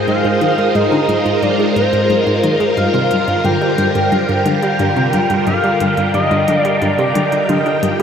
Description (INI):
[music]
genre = ambient, sequencer-driven space music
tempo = 89 BPM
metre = 4/4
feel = straight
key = unclear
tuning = A4 = 440 Hz
[part]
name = pulse-width lead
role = melody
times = 0.0-8.0 s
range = C5 to G5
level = -18 LUFS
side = equal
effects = chorus, tape echo
[part]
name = phased string machine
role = sustained chords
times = 0.0-8.0 s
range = D3 to G5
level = -16 LUFS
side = equal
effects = ensemble chorus, phaser
[part]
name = analog pluck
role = riff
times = 0.0-8.0 s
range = G2 to D4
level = -19 LUFS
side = equal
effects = chorus, tape echo
[part]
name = minimal click drum kit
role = percussion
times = 0.1-8.0 s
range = hi-hat, toms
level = -26 LUFS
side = left 1 dB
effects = overdrive, tape echo
[sound]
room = wet huge ambient reverb, RT60 7.3 s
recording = none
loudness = -12 LUFS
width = side -7 dB against mid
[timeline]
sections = 0.0-8.0 A section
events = fade-in on drum 0.0-8.0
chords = 0.0 Ab6; 2.8 Gm7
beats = | 0.08 0.75 1.42 2.10 | 2.77 3.45 4.12 4.79 | 5.47 6.14 6.82 7.49